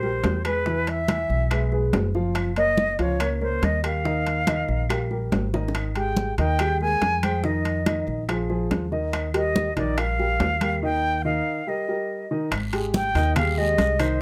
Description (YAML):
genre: Afro-Cuban jazz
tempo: 142 BPM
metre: 4/4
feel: straight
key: Eb major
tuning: A4 = 440 Hz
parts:
  - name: bright concert flute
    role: melody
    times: 0.0-14.2 s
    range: Cb5 to Ab5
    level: -28 LUFS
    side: equal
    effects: plate reverb
  - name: warm upright piano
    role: accompaniment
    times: 0.0-14.2 s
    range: Eb3 to F5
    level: -30 LUFS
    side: equal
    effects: none
  - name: upright bass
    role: bass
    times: 0.0-14.2 s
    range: F#1 to F2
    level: -29 LUFS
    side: equal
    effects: none
  - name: congas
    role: percussion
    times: 0.0-14.0 s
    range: none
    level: -31 LUFS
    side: equal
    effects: none
  - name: bongos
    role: percussion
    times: 0.2-14.0 s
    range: none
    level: -35 LUFS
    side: equal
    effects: none
  - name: timbales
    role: percussion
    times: 0.2-14.2 s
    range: none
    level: -34 LUFS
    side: equal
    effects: none
  - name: claves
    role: percussion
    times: 0.4-14.2 s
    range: none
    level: -40 LUFS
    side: equal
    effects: none
  - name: guiro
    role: percussion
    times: 12.5-14.2 s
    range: none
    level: -45 LUFS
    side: equal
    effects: none
room: moderate club reverb, RT60 0.5 s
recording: none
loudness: -24 LUFS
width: mono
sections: 0.0-12.5 A section; 12.5-14.2 B section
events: drum fill 5.5; break 10.8-12.5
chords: 0.0 Eb (rootless); 0.7 Eadd9; 2.4 Gbmaj7; 4.1 Ebadd9; 5.7 Abmaj7sus2; 7.4 Bbsus4; 8.3 Bb5; 9.1 Eb; 12.5 Abmaj7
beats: 0.24 | 0.66 1.09 1.51 1.94 | 2.36 2.78 3.21 3.63 | 4.05 4.48 4.90 5.32 | 5.75 6.17 6.59 7.02 | 7.44 7.86 8.29 8.71 | 9.13 9.56 9.98 10.40 | 10.82 11.25 11.67 12.09 | 12.52 12.94 13.36 13.78 | 14.21